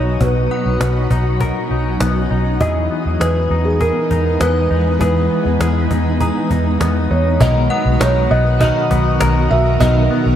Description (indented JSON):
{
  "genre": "dream pop",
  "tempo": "100 BPM",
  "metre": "4/4",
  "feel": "straight",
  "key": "B major",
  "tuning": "A4 = 440 Hz",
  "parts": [
    { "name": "felt-muted upright piano", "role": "melody", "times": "0.0-10.4 s", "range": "G#4 to E5", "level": "-21 LUFS", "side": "right 3 dB", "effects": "tape echo" },
    { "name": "shimmering ambient pad", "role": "sustained chords", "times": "0.0-10.4 s", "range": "D#3 to A#4", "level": "-21 LUFS", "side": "left 1 dB", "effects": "chorus, built-in reverb" },
    { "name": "semi-hollow electric guitar", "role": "arpeggios", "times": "0.0-10.4 s", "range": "B2 to A#4", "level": "-22 LUFS", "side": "left 5 dB", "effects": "lush chorus, tape echo" },
    { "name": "vintage muted fingered electric bass", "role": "bass", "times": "0.0-10.4 s", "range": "B1 to E2", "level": "-17 LUFS", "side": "equal", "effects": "none" },
    { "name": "synth chime", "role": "texture", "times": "0.0-9.2 s", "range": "F#5 to A#5", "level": "-32 LUFS", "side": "left 1 dB", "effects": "ensemble chorus, phaser, tape echo" },
    { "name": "cajon", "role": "drums", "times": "0.2-9.9 s", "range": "none", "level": "-23 LUFS", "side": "equal", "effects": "none" },
    { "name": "clean electric guitar", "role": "accompaniment", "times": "7.4-10.4 s", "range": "B2 to A#4", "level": "-22 LUFS", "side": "right 3 dB", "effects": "tremolo, analog chorus" }
  ],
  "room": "light reverb",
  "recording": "none",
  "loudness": "-13 LUFS",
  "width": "side -10 dB against mid",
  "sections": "0.0-7.4 A section; 7.4-10.4 B section",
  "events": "none",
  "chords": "0.0 Bmaj7; 2.6 Emaj7; 7.4 Bmaj7",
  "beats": "| 0.21 0.81 1.41 2.01 | 2.61 3.21 3.81 4.41 | 5.01 5.61 6.21 6.81 | 7.41 8.01 8.61 9.21 | 9.81"
}